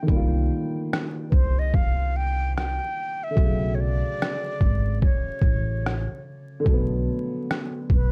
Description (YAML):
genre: lo-fi hip hop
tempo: 73 BPM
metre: 4/4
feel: swing 61% on 16ths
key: unclear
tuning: A4 = 439 Hz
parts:
  - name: dark upright piano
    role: accompaniment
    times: 0.0-8.1 s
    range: C#3 to F4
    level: -32 LUFS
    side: equal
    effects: low-pass filter
  - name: upright bass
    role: bass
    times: 0.1-8.1 s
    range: Ab1 to C2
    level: -28 LUFS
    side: equal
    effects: none
  - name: trip hop sampler-style drum kit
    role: drums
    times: 0.1-8.1 s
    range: kick drum, rim click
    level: -25 LUFS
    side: equal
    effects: none
  - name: breathy concert flute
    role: melody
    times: 1.3-8.1 s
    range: B4 to G5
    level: -34 LUFS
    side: equal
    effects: low-pass filter, tape echo, plate reverb
room: light reverb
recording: dark, warm production, vinyl crackle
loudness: -24 LUFS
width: mono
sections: 0.0-8.1 A section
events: break 0.0-8.1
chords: 0.0 Cm9; 3.4 Bm9